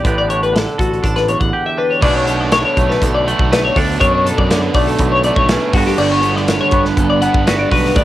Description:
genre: math rock and midwest emo.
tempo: 121 BPM.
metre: 4/4.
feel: straight.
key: unclear.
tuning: A4 = 438 Hz.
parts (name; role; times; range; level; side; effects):
twangy electric guitar; accompaniment; 0.0-8.0 s; E2 to A4; -20 LUFS; right 4 dB; cassette tape.
twelve-string electric guitar; arpeggios; 0.0-8.0 s; F#4 to F#5; -16 LUFS; left 3 dB; analog chorus, cassette tape.
picked electric bass; bass; 0.0-8.0 s; G1 to F#2; -20 LUFS; equal; none.
modern studio drum kit; drums; 0.0-8.0 s; crash cymbal, hi-hat, kick drum, snare drum; -18 LUFS; equal; cassette tape.
cranked stack guitar; riff; 2.0-8.0 s; G2 to D4; -20 LUFS; right 4 dB; overdrive, cassette tape.
room: light reverb.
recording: home recording on cassette.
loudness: -12 LUFS.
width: side -14 dB against mid.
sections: 0.0-2.0 A section; 2.0-8.0 B section.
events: none.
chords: 0.0 A9sus4; 2.0 Bm9; 5.7 Gmaj7.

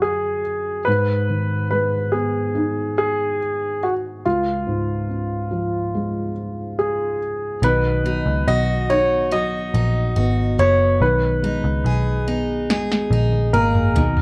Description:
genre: pop ballad.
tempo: 71 BPM.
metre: 4/4.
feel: straight.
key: unclear.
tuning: A4 = 438 Hz.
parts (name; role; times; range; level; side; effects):
warm grand piano; melody; 0.0-14.2 s; E#4 to D#5; -24 LUFS; equal; plate reverb.
felt-muted upright piano; accompaniment; 0.0-14.2 s; C#2 to D#4; -27 LUFS; equal; none.
picked steel-string acoustic guitar; arpeggios; 7.6-14.2 s; B2 to G#4; -29 LUFS; equal; none.
vintage muted picked electric bass; bass; 7.6-14.2 s; F#1 to C#2; -23 LUFS; equal; none.
house drum kit; drums; 12.7-14.2 s; snare drum, toms; -24 LUFS; equal; none.
room: moderate small room reverb, RT60 0.5 s.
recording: worn, warbling old tape, cassette tape, warbly pitch drift.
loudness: -20 LUFS.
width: mono.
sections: 0.0-7.6 A section; 7.6-14.2 B section.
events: drum fill 12.7-14.2.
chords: 0.0 D/F#; 0.9 G#m; 4.2 C#; 7.6 B; 11.0 G#madd9/B.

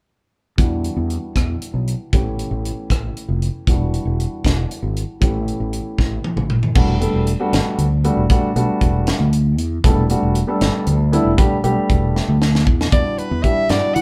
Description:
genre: electric jazz fusion.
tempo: 78 BPM (dotted quarters).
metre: 6/8.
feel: straight.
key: E dorian.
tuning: A4 = 439 Hz.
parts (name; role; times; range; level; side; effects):
dark baby grand piano; accompaniment; 0.6-14.0 s; E3 to A4; -24 LUFS; equal; none.
fretless electric bass; bass; 0.6-14.0 s; E1 to E3; -22 LUFS; equal; none.
tight funk drum kit; drums; 0.6-14.0 s; crash cymbal, hi-hat, kick drum, rim click, snare drum, toms; -21 LUFS; equal; none.
clear soprano saxophone; melody; 12.9-14.0 s; B4 to F#5; -22 LUFS; equal; none.
room: moderate studio reverb, RT60 0.5 s.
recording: band playing live in one room.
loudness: -18 LUFS.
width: mono.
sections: 0.6-6.8 A section; 6.8-12.9 B section; 12.9-14.0 C section.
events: drum fill 6.0-6.8, 12.2-12.9.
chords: 0.6 Em9; 2.1 A7; 3.7 Em9; 5.2 A7; 6.8 Em11; 12.9 Em9.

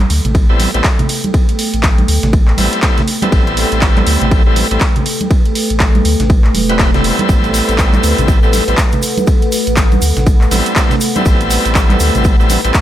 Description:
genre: deep house.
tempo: 121 BPM.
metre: 4/4.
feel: swing 60% on 16ths.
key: A dorian.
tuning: A4 = 440 Hz.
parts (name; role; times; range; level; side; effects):
deep dark ambient pad; sustained chords; 0.1-12.8 s; A3 to G5; -19 LUFS; equal; chorus, built-in reverb, sidechain pumping.
warm sub bass; bass; 0.0-12.7 s; E1 to D2; -16 LUFS; equal; sidechain pumping.
house drum kit; drums; 0.0-12.8 s; handclaps, hi-hat; -18 LUFS; equal; overdrive.
congas; percussion; 0.0-12.6 s; none; -20 LUFS; right 3 dB; none.
breakbeat sampler-style drum kit; drums; 0.1-12.8 s; ride cymbal, snare drum; -29 LUFS; right 2 dB; high-pass filter on cymbals, high-pass filter on snare.
electronic kick drum; drums; 0.3-12.8 s; none; -12 LUFS; equal; overdrive.
bright tonewheel organ; stabs; 0.5-12.7 s; G3 to B4; -18 LUFS; equal; overdrive, fast rotary speaker, dub echo.
tube shaker; percussion; 7.3-12.8 s; none; -28 LUFS; left 3 dB; none.
room: little or no reverb.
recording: none.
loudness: -10 LUFS.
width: side -12 dB against mid.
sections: 0.0-12.8 A section.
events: none.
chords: 0.0 Am9.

